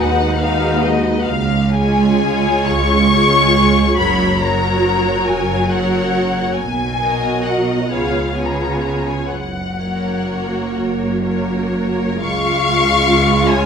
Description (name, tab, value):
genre	classical, slow romantic movement for string orchestra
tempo	40-49 BPM (dotted quarters)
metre	6/8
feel	rubato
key	F# major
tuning	A4 = 440 Hz
part	rich symphonic violin section	melody	0.0-13.7 s	D#5 to C#6	-19 LUFS	left 4 dB	none
part	rich symphonic violin section	second line	0.0-13.7 s	F#4 to F5	-21 LUFS	left 2 dB	none
part	warm symphonic viola section	accompaniment	0.0-13.7 s	F#3 to F#4	-20 LUFS	right 1 dB	none
part	rich studio double bass section	bass	0.0-13.7 s	F#1 to D#2	-22 LUFS	right 3 dB	none
part	rich symphonic cello section	bass	0.0-13.7 s	C#2 to C#3	-21 LUFS	right 2 dB	none
room	moderate recital hall reverb, RT60 1.4 s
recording	minimal, uncompressed stereo recording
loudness	-14 LUFS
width	side -7 dB against mid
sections	0.0-12.2 A section; 12.2-13.7 B section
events	none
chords	0.0 G#m7/D#; 1.3 C#; 4.0 F#; 6.6 Bmaj7; 7.9 C#7; 9.3 F#; 12.2 Db